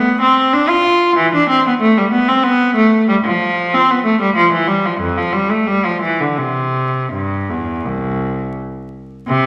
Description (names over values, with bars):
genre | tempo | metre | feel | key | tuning
classical, baroque-style suite movement for unaccompanied cello | 81-96 BPM | 4/4 | rubato | C major | A4 = 440 Hz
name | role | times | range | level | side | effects
clear cello | solo | 0.0-9.5 s | C2 to F4 | -15 LUFS | equal | none
room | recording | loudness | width
wet recital hall reverb, RT60 1.5 s | vinyl crackle | -15 LUFS | mono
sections
0.0-9.3 A section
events
none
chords
none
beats
0.53 | 1.17 1.80 2.43 3.08 | 3.73 4.37 5.01 5.68 | 6.39 7.13 7.86 8.56 | 9.27